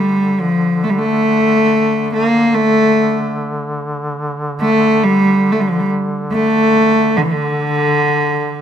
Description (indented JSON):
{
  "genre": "caucasian folk, Caucasian lament",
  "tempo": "70 BPM",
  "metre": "3/4",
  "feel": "rubato",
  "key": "D minor",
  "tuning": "A4 = 440 Hz",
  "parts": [
    { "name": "warm cello", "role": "melody", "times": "0.0-8.6 s", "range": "D3 to Bb3", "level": "-12 LUFS", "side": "equal", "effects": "none" },
    { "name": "clear duduk", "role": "drone", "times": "0.0-8.6 s", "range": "D3", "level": "-23 LUFS", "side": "equal", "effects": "none" }
  ],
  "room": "light reverb",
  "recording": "close, detailed microphones",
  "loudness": "-12 LUFS",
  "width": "side -9 dB against mid",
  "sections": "0.0-8.6 A section",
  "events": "none",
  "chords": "none"
}